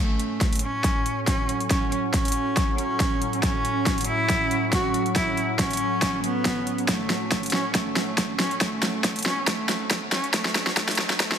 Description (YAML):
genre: heavy wobble dubstep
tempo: 139 BPM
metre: 4/4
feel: swing 54% on 16ths, half-time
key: F# minor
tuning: A4 = 439 Hz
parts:
  - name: clear cello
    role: melody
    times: 0.0-11.4 s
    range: A3 to F#4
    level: -27 LUFS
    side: equal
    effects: dub echo
  - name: evolving wavetable pad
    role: sustained chords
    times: 0.0-11.4 s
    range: A2 to C#4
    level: -30 LUFS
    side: right 2 dB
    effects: chorus, built-in reverb, sidechain pumping
  - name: big-room dance drum kit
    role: drums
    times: 0.2-11.4 s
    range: hi-hat, snare drum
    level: -25 LUFS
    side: equal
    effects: overdrive, studio ambience
  - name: electronic kick drum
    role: drums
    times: 0.4-11.3 s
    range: none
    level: -27 LUFS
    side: equal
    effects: overdrive, studio ambience
  - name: riser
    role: sound effects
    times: 8.7-11.4 s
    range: none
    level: -42 LUFS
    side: equal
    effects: none
room: moderate lush hall reverb, RT60 1.9 s, digital ambience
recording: high-pass filter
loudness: -22 LUFS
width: side -8 dB against mid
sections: 0.0-11.4 A section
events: build-up 0.0-11.4; drum fill 0.0-11.4; filter sweep 0.0-11.4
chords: 0.0 F#m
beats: 0.41 0.84 1.27 | 1.71 2.14 2.57 3.00 | 3.43 3.86 4.29 4.73 | 5.16 5.59 6.02 6.45 | 6.88 7.32 7.75 8.18 | 8.61 9.04 9.47 9.91 | 10.34 10.77 11.20